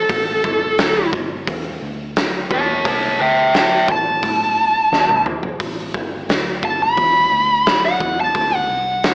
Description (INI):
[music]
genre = blues rock power trio and southern rock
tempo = 87 BPM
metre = 4/4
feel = straight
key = A mixolydian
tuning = A4 = 437 Hz
[part]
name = bluesy overdriven lead guitar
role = second line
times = 0.0-9.1 s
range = A4 to B5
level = -15 LUFS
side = equal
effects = distortion
[part]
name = vintage muted fingered electric bass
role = bass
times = 0.0-9.1 s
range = G1 to A2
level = -31 LUFS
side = equal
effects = none
[part]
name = oversized low-tuned drum kit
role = drums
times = 0.1-9.1 s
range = hi-hat, kick drum, snare drum, toms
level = -20 LUFS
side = equal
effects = none
[sound]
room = moderate plate reverb, RT60 2.0 s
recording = AM radio sound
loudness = -14 LUFS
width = side -35 dB against mid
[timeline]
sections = 0.0-9.1 A section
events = lead electric guitar solo 0.0-9.1; drum fill 4.9-5.6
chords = 0.0 A5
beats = | 0.10 0.79 1.48 2.17 | 2.86 3.55 4.23 4.92 | 5.61 6.30 6.99 7.67 | 8.36 9.05